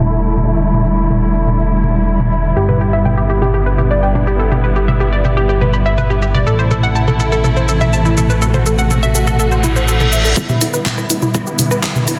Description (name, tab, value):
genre	melodic techno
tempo	123 BPM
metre	4/4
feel	straight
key	E minor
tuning	A4 = 440 Hz
part	dark symphonic string section	sustained chords	0.0-12.2 s	C3 to F#4	-21 LUFS	equal	sidechain pumping, low-pass filter
part	fat analog bass	bass	0.0-12.2 s	D1 to A1	-19 LUFS	equal	tube saturation, sidechain pumping, high-pass filter
part	house drum kit	drums	0.0-12.2 s	handclaps, hi-hat, rim click, shaker, toms	-21 LUFS	equal	none
part	analog pluck	arpeggios	2.6-12.2 s	B3 to B5	-21 LUFS	equal	chorus, sidechain pumping, delay
part	reverse cymbal and riser	sound effects	9.6-12.2 s	none	-24 LUFS	equal	none
part	electronic kick drum	drums	10.4-11.9 s	none	-24 LUFS	equal	high-pass filter on kick, high-pass filter on room
room	moderate concert hall reverb, RT60 2.3 s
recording	dense, heavily limited modern master, low-pass filter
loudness	-14 LUFS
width	mono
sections	0.0-10.4 A section; 10.4-12.2 B section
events	filter sweep 0.0-10.4; reverse cymbal 9.6-10.4; build-up 10.4-12.2; filter sweep on synth pluck 10.4-12.2; filter sweep on string section 10.4-12.2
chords	0.0 Em7; 2.6 G6; 6.5 Am; 10.4 Em7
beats	0.13 | 0.61 1.10 1.59 2.08 | 2.56 3.05 3.54 4.03 | 4.52 5.00 5.49 5.98 | 6.47 6.96 7.44 7.93 | 8.42 8.91 9.39 9.88 | 10.37 10.86 11.35 11.83